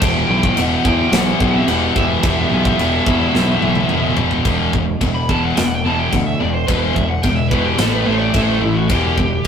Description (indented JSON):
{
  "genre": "heavy metal",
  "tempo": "108 BPM",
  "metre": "4/4",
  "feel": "straight",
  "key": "E minor",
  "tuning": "A4 = 441 Hz",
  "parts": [
    { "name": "high-gain lead guitar", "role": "melody", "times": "0.0-9.5 s", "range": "E4 to B5", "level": "-22 LUFS", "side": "right 1 dB", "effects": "distortion" },
    { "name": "high-gain lead guitar", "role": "second line", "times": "0.0-4.2 s", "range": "B3 to E4", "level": "-30 LUFS", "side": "right 4 dB", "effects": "none" },
    { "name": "rich chamber string section", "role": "sustained chords", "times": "0.0-4.4 s", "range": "E3 to G4", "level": "-28 LUFS", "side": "left 1 dB", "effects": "none" },
    { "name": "scooped high-gain guitar", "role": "riff", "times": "0.0-9.4 s", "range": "E2 to A3", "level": "-20 LUFS", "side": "left 4 dB", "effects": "distortion" },
    { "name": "sludgy distorted guitar", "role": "riff", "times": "0.0-9.4 s", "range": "E2 to A3", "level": "-20 LUFS", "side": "right 2 dB", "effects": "overdrive" },
    { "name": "growling fingered electric bass", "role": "bass", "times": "0.0-9.4 s", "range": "E1 to E2", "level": "-21 LUFS", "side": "equal", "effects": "overdrive" },
    { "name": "tight metal drum kit", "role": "drums", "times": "0.0-9.5 s", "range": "crash cymbal, kick drum, snare drum, toms", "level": "-21 LUFS", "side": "equal", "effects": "none" }
  ],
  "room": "light reverb",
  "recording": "rough rehearsal-room recording, tube saturation",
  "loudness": "-14 LUFS",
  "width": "side -7 dB against mid",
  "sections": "0.0-4.5 A section; 4.5-9.5 B section",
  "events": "drum fill 3.3-4.5; lead electric guitar solo 4.5-9.5",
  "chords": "0.0 Em; 4.5 E5; 7.8 A5; 8.9 Em"
}